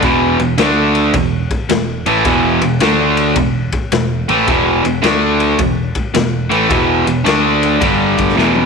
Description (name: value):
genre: blues rock power trio and southern rock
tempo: 108 BPM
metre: 4/4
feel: swing 66% on 8ths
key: unclear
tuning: A4 = 440 Hz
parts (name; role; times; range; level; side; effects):
- crunchy overdriven guitar; riff; 0.0-8.7 s; E2 to D4; -13 LUFS; equal; none
- picked electric bass; bass; 0.0-8.7 s; E1 to D2; -21 LUFS; right 1 dB; none
- raw garage drum kit; drums; 0.0-8.7 s; kick drum, ride cymbal, snare drum, toms; -19 LUFS; left 4 dB; none
room: moderate echo chamber reverb, RT60 1.5 s, studio reverb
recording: 1960s-style stereo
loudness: -12 LUFS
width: side -5 dB against mid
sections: 0.0-8.7 A section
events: drum fill 8.4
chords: 0.0 E5; 0.6 D5; 1.1 E5; 2.8 D5; 3.4 E5; 5.0 D5; 5.6 E5; 7.3 D5; 7.8 G5